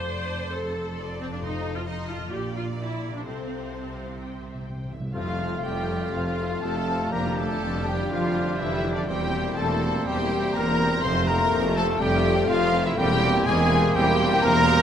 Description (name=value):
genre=classical, dramatic, fast romantic movement for symphony orchestra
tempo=119-134 BPM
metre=4/4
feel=straight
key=F major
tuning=A4 = 439 Hz
part: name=warm symphonic violin section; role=melody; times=0.0-14.8 s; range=D5 to C6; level=-31 LUFS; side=left 2 dB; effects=none
part: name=warm symphonic violin section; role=second line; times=0.0-14.8 s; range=D4 to Eb5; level=-34 LUFS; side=left 2 dB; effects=none
part: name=rich symphonic viola section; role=accompaniment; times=0.0-14.8 s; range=F3 to C5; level=-34 LUFS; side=left 1 dB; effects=none
part: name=concert harp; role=arpeggios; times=0.0-14.8 s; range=E2 to C6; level=-34 LUFS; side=left 10 dB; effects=none
part: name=rich symphonic cello section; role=bass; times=0.0-14.8 s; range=E2 to C3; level=-31 LUFS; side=right 1 dB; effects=none
part: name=rich symphonic double bass section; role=bass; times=0.0-14.8 s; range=E1 to C2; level=-32 LUFS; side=right 3 dB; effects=none
part: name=timpani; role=percussion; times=1.4-5.1, 11.0-11.7 s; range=F2 to C3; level=-38 LUFS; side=left 1 dB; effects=none
part: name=clear clarinet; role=second line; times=5.1-14.8 s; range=C4 to D4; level=-36 LUFS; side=left 1 dB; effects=none
part: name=small flute group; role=second line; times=5.1-14.8 s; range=D5 to C6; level=-32 LUFS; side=left 2 dB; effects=none
part: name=warm cor anglais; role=second line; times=5.1-14.8 s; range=F4 to C5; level=-36 LUFS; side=right 2 dB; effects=none
part: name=mellow bassoon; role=accompaniment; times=5.1-14.8 s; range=G3 to Bb3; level=-33 LUFS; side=right 1 dB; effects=none
part: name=warm French horn section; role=sustained chords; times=5.1-14.8 s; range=D3 to C4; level=-30 LUFS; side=left 3 dB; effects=none
part: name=warm trombone section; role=sustained chords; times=5.1-14.8 s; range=C3 to Bb3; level=-33 LUFS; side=right 4 dB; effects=none
part: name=warm trumpet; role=stabs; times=5.1-14.8 s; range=D4 to C5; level=-30 LUFS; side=right 2 dB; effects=none
part: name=warm tuba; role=bass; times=5.1-14.8 s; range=E1 to F1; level=-33 LUFS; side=right 4 dB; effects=none
room=moderate concert hall reverb, RT60 1.8 s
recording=none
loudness=-22 LUFS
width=side -9 dB against mid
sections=0.0-5.1 A section; 5.1-14.8 B section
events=timpani fill 4.2-5.1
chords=0.0 F; 2.3 Bb; 3.2 F/C; 4.2 C; 5.1 F; 7.1 G5/F; 9.1 C7/E; 11.0 F; 13.0 C7/E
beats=0.06 0.51 0.96 | 1.42 1.86 2.32 2.78 | 3.25 3.72 4.19 4.66 | 5.14 5.64 6.14 6.63 | 7.12 7.62 8.11 8.60 | 9.08 9.57 10.07 10.55 | 11.04 11.53 12.01 12.49 | 12.98 13.46 13.95 14.44